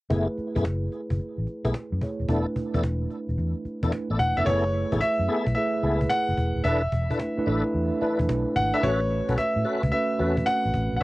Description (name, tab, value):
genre	R&B, new jack swing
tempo	110 BPM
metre	4/4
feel	swing 66% on 16ths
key	F# minor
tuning	A4 = 440 Hz
part	mellow tine electric piano	accompaniment	0.1-11.0 s	A3 to C#5	-29 LUFS	right 2 dB	slow stereo tremolo, cassette tape
part	tonewheel organ	stabs	0.1-11.0 s	A3 to B4	-29 LUFS	left 1 dB	overdrive, chorus vibrato, slow rotary speaker, cassette tape
part	vintage muted fingered electric bass	bass	0.1-11.0 s	D#1 to A2	-27 LUFS	equal	none
part	cajon	drums	0.1-11.0 s	none	-31 LUFS	equal	cassette tape
part	clear concert grand piano	melody	4.2-11.0 s	C#5 to F#5	-26 LUFS	equal	cassette tape
room	light reverb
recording	home recording on cassette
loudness	-23 LUFS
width	side -19 dB against mid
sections	0.1-4.5 A section; 4.5-11.0 B section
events	none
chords	0.1 F#m11; 2.3 E7sus4; 4.5 F#m11; 6.6 E7sus4; 8.8 A69